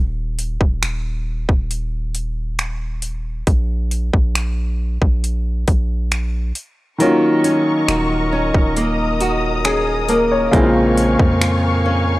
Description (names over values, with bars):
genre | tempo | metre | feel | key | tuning
contemporary R&B | 68 BPM | 4/4 | straight | unclear | A4 = 441 Hz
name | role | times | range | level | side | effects
long sustained 808-style bass | bass | 0.0-12.2 s | Eb1 to F2 | -21 LUFS | equal | none
trap drum kit | drums | 0.4-11.6 s | finger snaps, hi-hat, kick drum | -18 LUFS | equal | overdrive
warm grand piano | accompaniment | 7.0-12.2 s | Db3 to Db5 | -18 LUFS | left 1 dB | none
muted studio string section | sustained chords | 7.0-12.2 s | Bb4 to Eb6 | -22 LUFS | left 1 dB | none
nylon-string guitar | arpeggios | 7.0-12.2 s | Bb2 to Gb4 | -20 LUFS | right 1 dB | none
room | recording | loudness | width
small room ambience | dry, gritty hardware recording, cassette tape | -16 LUFS | side -18 dB against mid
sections
0.0-12.2 A section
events
kick muted 7.0-7.9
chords
0.0 N.C.; 7.0 Ebm7; 10.5 Bbm7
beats
0.83 1.71 2.59 | 3.47 4.36 5.24 6.12 | 7.00 7.89 8.77 9.65 | 10.53 11.41